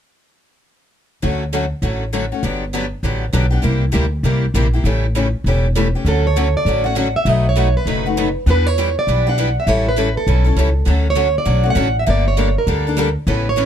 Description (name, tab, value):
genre	acoustic string swing (jazz manouche)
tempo	200 BPM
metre	4/4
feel	swing 60% on 8ths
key	D major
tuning	A4 = 440 Hz
part	picked steel-string acoustic guitar	accompaniment	1.2-13.7 s	B2 to A4	-22 LUFS	left 6 dB	none
part	picked steel-string acoustic guitar	accompaniment	1.2-13.7 s	B2 to B4	-25 LUFS	right 5 dB	none
part	upright bass	bass	1.2-13.7 s	E1 to E2	-17 LUFS	equal	none
part	picked plugged-in steel-string acoustic guitar	melody	6.1-13.7 s	A4 to F#5	-19 LUFS	right 3 dB	none
room	little or no reverb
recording	close, detailed microphones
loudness	-15 LUFS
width	side -9 dB against mid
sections	1.2-6.1 A section; 6.1-13.7 B section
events	none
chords	1.2 Dmaj7; 2.4 Gmaj7; 3.6 C9; 4.9 A7; 6.1 Dmaj7; 7.3 B7; 8.5 Em7; 9.7 A7; 10.9 Dmaj7; 12.1 Gmadd9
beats	| 1.23 1.53 1.83 2.14 | 2.44 2.74 3.04 3.34 | 3.65 3.95 4.25 4.55 | 4.85 5.15 5.45 5.75 | 6.06 6.36 6.66 6.96 | 7.26 7.56 7.86 8.16 | 8.46 8.76 9.06 9.37 | 9.67 9.97 10.27 10.57 | 10.87 11.17 11.47 11.77 | 12.07 12.37 12.67 12.97 | 13.27 13.57